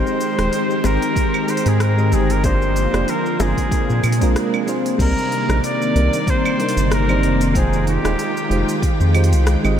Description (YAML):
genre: sunset chillout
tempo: 94 BPM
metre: 4/4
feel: swing 56% on 16ths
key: unclear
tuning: A4 = 440 Hz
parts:
  - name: clear flugelhorn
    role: melody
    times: 0.0-8.8 s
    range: G4 to D5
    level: -23 LUFS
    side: equal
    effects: diffuse ambient delay
  - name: soft electric-piano-like synth keys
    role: accompaniment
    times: 0.0-9.8 s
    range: G3 to G5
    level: -23 LUFS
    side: moving between left 3 dB and right 4 dB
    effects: chorus, auto-pan, diffuse ambient delay
  - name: soft string machine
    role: sustained chords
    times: 0.0-9.8 s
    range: C3 to G5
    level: -22 LUFS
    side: left 1 dB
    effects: ensemble chorus
  - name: round analog bass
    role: bass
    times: 0.0-9.8 s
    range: Eb1 to Bb2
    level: -18 LUFS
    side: equal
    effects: none
  - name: smooth R&B drum kit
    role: drums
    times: 0.1-9.8 s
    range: cabasa, claves, crash cymbal, hi-hat, rim click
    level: -28 LUFS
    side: right 1 dB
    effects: studio reverb
  - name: bongos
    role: percussion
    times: 0.8-3.5 s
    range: none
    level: barely audible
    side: none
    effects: none
  - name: electronic kick drum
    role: drums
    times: 1.2-9.0 s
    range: none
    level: -21 LUFS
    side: equal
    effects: studio reverb
room: moderate huge ambient reverb, RT60 7.1 s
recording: dreamy mix soaked in reverb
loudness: -15 LUFS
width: side -9 dB against mid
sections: 0.0-5.0 A section; 5.0-9.8 B section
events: break 4.4-5.0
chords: 0.0 Abmaj7; 2.4 Gm7; 3.7 Bb9; 5.0 Cm9; 7.5 Fm9